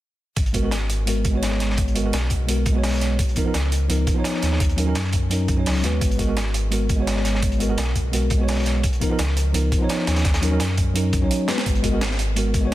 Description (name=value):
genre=liquid drum and bass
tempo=170 BPM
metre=4/4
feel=straight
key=G# dorian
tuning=A4 = 440 Hz
part: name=sub bass with octave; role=bass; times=0.4-12.7 s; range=G#1 to F#2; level=-22 LUFS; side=equal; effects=tube saturation
part: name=breakbeat sampler-style drum kit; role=drums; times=0.4-12.7 s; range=hi-hat, snare drum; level=-30 LUFS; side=right 4 dB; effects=studio reverb
part: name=crunchy breakbeat drum kit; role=drums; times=0.4-12.6 s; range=hi-hat, snare drum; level=-29 LUFS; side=equal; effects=high-pass filter on hats, studio reverb, high-pass filter on snare, high-pass filter on room
part: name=electronic kick drum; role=drums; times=0.4-12.6 s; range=none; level=-23 LUFS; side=equal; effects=studio reverb
part: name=tine electric piano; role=accompaniment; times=0.5-12.7 s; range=E#3 to C#5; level=-24 LUFS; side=equal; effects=medium stereo tremolo, ping-pong delay
room=light reverb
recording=dense, heavily limited modern master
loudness=-19 LUFS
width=side -15 dB against mid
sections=0.4-12.7 A section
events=drum fill 11.5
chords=0.4 G#m9; 3.2 C#13; 4.6 D#m7; 6.0 G#m9; 8.8 C#13; 10.2 D#m7; 11.7 G#m9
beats=| 0.37 0.72 1.07 1.43 | 1.78 2.13 2.48 2.84 | 3.19 3.54 3.90 4.25 | 4.60 4.96 5.31 5.66 | 6.01 6.37 6.72 7.07 | 7.43 7.78 8.13 8.48 | 8.84 9.19 9.54 9.90 | 10.25 10.60 10.96 11.31 | 11.66 12.02 12.37 12.72